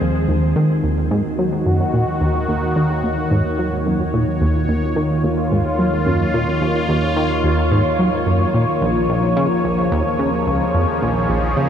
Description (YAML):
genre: ambient, sequencer-driven space music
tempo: 109 BPM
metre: 4/4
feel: straight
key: Eb minor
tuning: A4 = 440 Hz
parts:
  - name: sweeping resonant pad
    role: sustained chords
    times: 0.0-11.7 s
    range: Eb3 to Db5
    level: -19 LUFS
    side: equal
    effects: chorus
  - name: plucky analog bass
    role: riff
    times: 0.0-11.7 s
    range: Bb1 to Gb3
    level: -19 LUFS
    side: equal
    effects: analog delay
  - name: analog drone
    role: bass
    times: 0.8-11.7 s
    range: Eb2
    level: -28 LUFS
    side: equal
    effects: chorus
  - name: wind-like tuned noise texture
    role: texture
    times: 1.3-11.7 s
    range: Eb5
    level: -40 LUFS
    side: right 5 dB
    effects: none
room: wet huge ambient reverb, RT60 7.3 s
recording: dark, warm production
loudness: -16 LUFS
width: side -8 dB against mid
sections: 0.0-11.7 A section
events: none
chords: 0.0 Ebm7; 8.8 Bbm7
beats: | 0.01 0.56 1.11 1.66 | 2.21 2.76 3.31 3.86 | 4.41 4.96 5.51 6.06 | 6.61 7.17 7.71 8.27 | 8.82 9.37 9.92 10.47 | 11.02 11.57